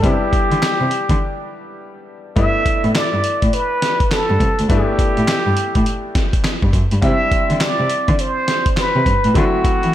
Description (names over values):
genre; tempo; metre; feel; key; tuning
R&B, new jack swing; 103 BPM; 4/4; swing 63% on 16ths; G major; A4 = 441 Hz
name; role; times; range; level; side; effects
trumpet with plunger mute; melody; 0.0-9.9 s; F#4 to E5; -19 LUFS; right 1 dB; none
bright grand piano; accompaniment; 0.0-9.9 s; F#3 to E4; -25 LUFS; left 3 dB; none
warm cello; bass; 0.0-9.9 s; C2 to E3; -19 LUFS; equal; none
dusty soul sampler-style drum kit; drums; 0.0-9.9 s; handclaps, hi-hat, kick drum, snare drum; -19 LUFS; equal; none
room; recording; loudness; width
light reverb, studio ambience; none; -14 LUFS; side -12 dB against mid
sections
0.0-9.9 A section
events
break 1.2-2.4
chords
0.0 Cmaj9 (rootless); 2.4 G6; 7.0 Cmaj9; 9.4 D7 (rootless)